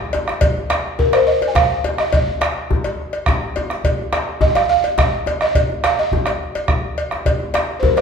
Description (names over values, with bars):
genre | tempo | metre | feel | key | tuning
west african traditional, West African drum ensemble | 140 BPM (dotted quarters) | 12/8 | straight | unclear | A4 = 442 Hz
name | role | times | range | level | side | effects
cowbell | percussion | 0.1-8.0 s | none | -24 LUFS | left 1 dB | none
djembe | percussion | 0.1-8.0 s | none | -25 LUFS | left 4 dB | none
bombo | percussion | 0.3-8.0 s | none | -19 LUFS | right 1 dB | none
balafon | melody | 1.0-8.0 s | Bb4 to Ab5 | -17 LUFS | right 1 dB | none
room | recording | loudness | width
wet large studio reverb, RT60 1.3 s | band playing live in one room | -16 LUFS | side -6 dB against mid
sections
0.0-8.0 A section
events
none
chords
none